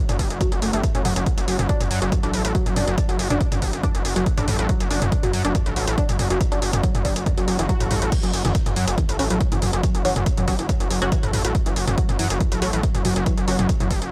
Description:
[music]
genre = driving peak-time techno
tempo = 140 BPM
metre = 4/4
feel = straight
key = F# phrygian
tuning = A4 = 440 Hz
[part]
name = swarming drone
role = drone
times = 0.3-14.1 s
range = F#3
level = -36 LUFS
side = equal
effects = none
[part]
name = tight sequenced synth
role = riff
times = 0.1-13.9 s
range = E3 to D4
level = -30 LUFS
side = equal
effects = chorus, phaser, tube saturation, sidechain pumping, dub echo
[part]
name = gritty driven synth bass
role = bass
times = 0.1-14.1 s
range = F#1 to F#2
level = -26 LUFS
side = equal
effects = tube saturation, sidechain pumping
[part]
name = punchy analog drum machine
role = drums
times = 0.1-14.1 s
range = crash cymbal, hi-hat, toms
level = -30 LUFS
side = equal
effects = sidechain pumping on hats, sidechain pumping on cymbals, sidechain pumping on toms
[part]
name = electronic kick drum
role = drums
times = 0.2-14.0 s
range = none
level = -25 LUFS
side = equal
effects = none
[part]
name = swell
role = sound effects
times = 7.4-8.1 s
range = none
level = -37 LUFS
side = equal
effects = none
[part]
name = filtered dub chord stab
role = stabs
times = 9.2-13.5 s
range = F#3 to F#4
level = -30 LUFS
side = equal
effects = phaser, analog chorus, sidechain pumping, dub echo
[sound]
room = light reverb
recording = none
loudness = -21 LUFS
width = mono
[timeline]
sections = 0.0-14.1 A section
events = swell 7.4-8.1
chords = 0.0 F#5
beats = 0.41 0.83 | 1.26 1.69 2.12 2.55 | 2.98 3.41 3.83 4.26 | 4.69 5.12 5.55 5.98 | 6.41 6.83 7.26 7.69 | 8.12 8.55 8.98 9.41 | 9.83 10.26 10.69 11.12 | 11.55 11.98 12.41 12.83 | 13.26 13.69

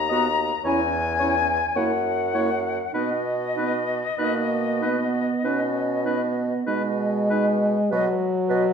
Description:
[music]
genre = classical, slow romantic movement for wind quintet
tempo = 47-56 BPM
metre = 4/4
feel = rubato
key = B major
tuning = A4 = 439 Hz
[part]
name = silver concert flute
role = melody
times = 0.0-8.6 s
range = D#5 to A#5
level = -26 LUFS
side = left 7 dB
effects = none
[part]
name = warm bassoon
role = bass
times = 0.0-8.7 s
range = D#2 to B2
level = -27 LUFS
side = right 3 dB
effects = none
[part]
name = warm oboe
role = second line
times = 0.1-7.5 s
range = B4 to D#5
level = -31 LUFS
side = left 2 dB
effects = none
[part]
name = mellow French horn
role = accompaniment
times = 0.1-8.7 s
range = F#3 to C#4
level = -25 LUFS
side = right 1 dB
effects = none
[part]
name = warm clarinet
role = accompaniment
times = 0.1-8.6 s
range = D#4 to B4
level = -32 LUFS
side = right 6 dB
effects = none
[sound]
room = wet recital hall reverb, RT60 1.4 s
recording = minimal, uncompressed stereo recording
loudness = -21 LUFS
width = side -6 dB against mid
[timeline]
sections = 0.0-7.9 A section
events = none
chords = 0.0 B/D#; 0.7 C#m/E; 1.8 F#7; 3.0 B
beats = 0.66 1.77 | 2.95 4.20 5.45 6.68 | 7.91

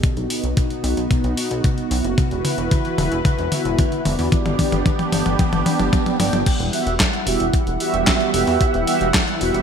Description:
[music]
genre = italo disco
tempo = 112 BPM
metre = 4/4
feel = straight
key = E minor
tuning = A4 = 440 Hz
[part]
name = warm analog pad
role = sustained chords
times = 0.0-9.6 s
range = E3 to F#5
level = -24 LUFS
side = equal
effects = chorus, phaser
[part]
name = mellow synth brass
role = stabs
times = 0.0-9.6 s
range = B3 to G5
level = -24 LUFS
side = right 3 dB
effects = chorus, cassette tape, digital delay
[part]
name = clean 12-bit digital drum machine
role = drums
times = 0.0-9.6 s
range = crash cymbal, handclaps, hi-hat, snare drum, toms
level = -22 LUFS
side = left 1 dB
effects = gated reverb
[part]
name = electronic kick drum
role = drums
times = 0.0-9.2 s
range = none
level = -20 LUFS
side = equal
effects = none
[part]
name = chorused synth bass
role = bass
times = 0.2-9.6 s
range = E1 to E2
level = -25 LUFS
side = left 1 dB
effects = none
[sound]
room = moderate plate reverb, RT60 1.9 s, digital ambience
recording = bright 1980s-style digital production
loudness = -17 LUFS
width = side -7 dB against mid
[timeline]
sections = 0.0-6.5 A section; 6.5-9.6 B section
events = drum fill 0.0-6.5; filter sweep on analog polysynth 0.0-6.5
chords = 0.0 B; 2.2 Esus2; 4.3 G; 6.5 Emadd9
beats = | 0.04 0.57 1.11 1.64 | 2.18 2.71 3.25 3.79 | 4.32 4.86 5.39 5.93 | 6.46 7.00 7.54 8.07 | 8.61 9.14

